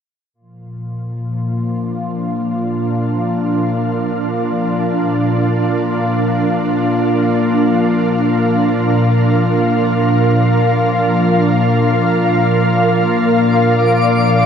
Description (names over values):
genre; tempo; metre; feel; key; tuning
ambient; free time; none; none; Bb major; A4 = 439 Hz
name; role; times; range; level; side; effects
ethereal airy pad; sustained chords; 0.7-14.5 s; Bb2 to F5; -14 LUFS; equal; ensemble chorus, built-in reverb, shimmer reverb
organ-like drone; drone; 1.1-14.5 s; Bb3 to F4; -18 LUFS; left 2 dB; ensemble chorus, built-in reverb
twinkling granular texture; texture; 13.5-14.5 s; D5 to D6; -21 LUFS; left 2 dB; built-in reverb
room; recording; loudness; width
wet huge ambient reverb, RT60 7.6 s; in a vast, echoing space, cassette tape; -13 LUFS; side -7 dB against mid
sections
0.3-14.5 A section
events
none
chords
0.3 Bb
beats
free time